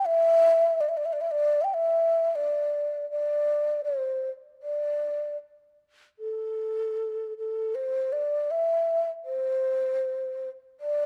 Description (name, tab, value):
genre	chinese traditional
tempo	78 BPM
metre	4/4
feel	rubato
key	D shang mode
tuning	A4 = 441 Hz
part	breathy mellow low xiao	solo	0.0-11.1 s	A4 to G5	-27 LUFS	equal	none
room	little or no reverb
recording	close, detailed microphones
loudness	-27 LUFS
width	mono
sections	0.0-6.2 A section; 6.2-11.1 B section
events	none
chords	none